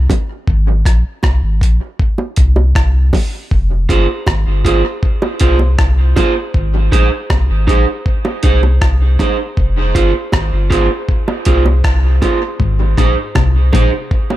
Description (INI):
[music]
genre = dub reggae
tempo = 79 BPM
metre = 4/4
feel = straight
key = unclear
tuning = A4 = 438 Hz
[part]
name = warm sub bass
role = bass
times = 0.0-13.9 s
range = F1 to C2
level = -12 LUFS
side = equal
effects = none
[part]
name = dusty soul sampler-style drum kit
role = drums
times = 0.1-14.3 s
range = hi-hat, kick drum, rim click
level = -16 LUFS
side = equal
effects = none
[part]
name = bongos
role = percussion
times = 0.1-14.4 s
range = none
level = -23 LUFS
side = right 2 dB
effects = dub echo
[part]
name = electric guitar at the edge of break-up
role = accompaniment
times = 3.9-14.3 s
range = Eb4 to C5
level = -17 LUFS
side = right 4 dB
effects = spring reverb, dub echo
[part]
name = mellow electric guitar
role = riff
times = 12.6-13.8 s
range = Ab2 to C3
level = -20 LUFS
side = left 6 dB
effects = phaser, dub echo
[sound]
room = little or no reverb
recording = echo-heavy mix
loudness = -11 LUFS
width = side -14 dB against mid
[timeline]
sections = 0.0-14.4 A section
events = break 0.0-3.5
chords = 0.5 Ab; 3.5 Fm; 6.5 Ab; 9.6 Fm; 12.6 Ab